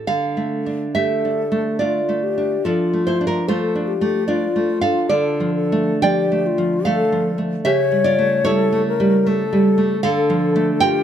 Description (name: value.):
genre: romantic duo for flute and classical guitar.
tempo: 61-78 BPM.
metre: 3/4.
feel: rubato.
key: D minor.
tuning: A4 = 440 Hz.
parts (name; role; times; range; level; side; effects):
nylon-string guitar; accompaniment; 0.0-11.0 s; C#3 to G5; -18 LUFS; right 2 dB; none.
mellow hollow concert flute; melody; 1.0-11.0 s; F4 to C#5; -21 LUFS; left 6 dB; none.
room: moderate recital hall reverb, RT60 1.6 s.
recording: close, detailed microphones.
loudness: -16 LUFS.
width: side -9 dB against mid.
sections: 0.1-11.0 A section.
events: none.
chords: 0.1 Dm; 2.7 Dm/F; 5.1 Dm; 7.7 A7/C#; 10.0 Dm.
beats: | 0.08 0.95 1.81 | 2.65 3.48 4.28 | 5.10 6.03 6.87 | 7.66 8.46 9.27 | 10.04 10.82.